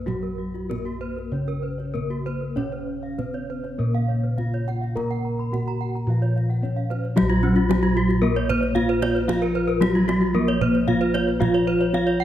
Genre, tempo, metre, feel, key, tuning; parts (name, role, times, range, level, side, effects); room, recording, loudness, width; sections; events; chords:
Balinese gamelan; 96-113 BPM; 4/4; straight; Bb pelog; A4 = 443 Hz
gamelan-type bronze metallophone; melody; 0.0-12.2 s; Gb3 to Bb4; -25 LUFS; equal
gamelan-type bronze metallophone; arpeggios; 0.0-12.1 s; F4 to Cb6+35c; -30 LUFS; left 4 dB
gamelan-type bossed gongs; bass; 0.0-12.2 s; Bb1 to Bb4; -26 LUFS; equal
kendang; percussion; 0.1-12.1 s; -32 LUFS; right 4 dB
gamelan-type bronze metallophone; arpeggios; 0.2-12.2 s; Db4 to Bb5; -29 LUFS; right 3 dB
gamelan-type bronze metallophone; accompaniment; 2.6-12.2 s; Db3 to Bb3; -29 LUFS; left 2 dB
moderate scoring stage reverb, RT60 1.7 s; dark, warm production; -20 LUFS; side -11 dB against mid
0.0-7.2 A section; 7.2-12.2 B section